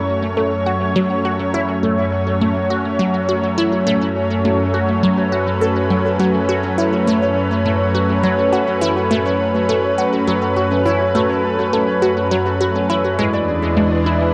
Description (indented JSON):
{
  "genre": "ambient, sequencer-driven space music",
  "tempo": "103 BPM",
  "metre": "4/4",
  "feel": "straight",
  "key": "F# minor",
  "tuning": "A4 = 444 Hz",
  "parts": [
    { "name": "lush unison pad", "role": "sustained chords", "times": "0.0-14.3 s", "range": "E2 to C#5", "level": "-20 LUFS", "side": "equal", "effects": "chorus, cassette tape" },
    { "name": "Celtic harp", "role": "arpeggios", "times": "0.0-14.3 s", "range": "C#4 to D5", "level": "-27 LUFS", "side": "equal", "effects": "cassette tape, tape echo" },
    { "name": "resonant blip pluck", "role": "riff", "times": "0.4-14.3 s", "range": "F#3 to A4", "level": "-22 LUFS", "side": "equal", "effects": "phaser, cassette tape, tape echo" }
  ],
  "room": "wet spring reverb, RT60 1.4 s, small room ambience",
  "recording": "home recording on cassette",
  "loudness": "-17 LUFS",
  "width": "mono",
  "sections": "0.0-14.3 A section",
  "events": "fade-in on harp 0.0-14.3",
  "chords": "0.0 F#m; 13.2 E7"
}